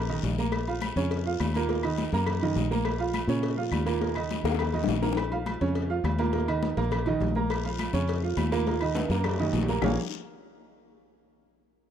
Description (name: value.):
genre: latin, salsa.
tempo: 206 BPM.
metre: 4/4.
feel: straight.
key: Bb minor.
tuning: A4 = 441 Hz.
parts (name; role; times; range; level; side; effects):
warm upright piano; accompaniment; 0.0-10.0 s; Bb2 to Bb5; -29 LUFS; right 6 dB; none.
fingered electric bass; bass; 0.0-10.0 s; Bb1 to Bb2; -30 LUFS; left 1 dB; none.
agogo bells and timbales; percussion; 0.1-9.9 s; none; -36 LUFS; right 1 dB; none.
congas; percussion; 0.1-9.9 s; none; -35 LUFS; left 5 dB; none.
cowbell and bongos; percussion; 0.2-9.9 s; none; -35 LUFS; left 12 dB; none.
guiro; percussion; 0.2-5.2, 7.5-9.9 s; none; -42 LUFS; left 17 dB; none.
claves; percussion; 0.5-9.9 s; none; -42 LUFS; left 16 dB; none.
room: studio reverb.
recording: dry, close 1970s-style studio recording.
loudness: -25 LUFS.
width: side -9 dB against mid.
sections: 0.0-5.2 A section; 5.2-9.8 B section; 9.8-11.0 C section.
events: drum fill 4.5-5.2, 9.0-9.8.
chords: 0.0 Eb5; 0.5 Bbm; 1.7 Ebm; 2.9 Bbm; 4.0 Eb5; 5.2 Bbm; 6.3 Eb5; 7.5 Bbm; 8.7 Ebm; 9.8 Bbm7.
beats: 0.24 | 0.53 0.82 1.11 1.40 | 1.69 1.98 2.27 2.56 | 2.85 3.15 3.44 3.73 | 4.02 4.31 4.60 4.89 | 5.18 5.47 5.76 6.05 | 6.34 6.63 6.92 7.21 | 7.50 7.79 8.09 8.38 | 8.67 8.96 9.25 9.54 | 9.83.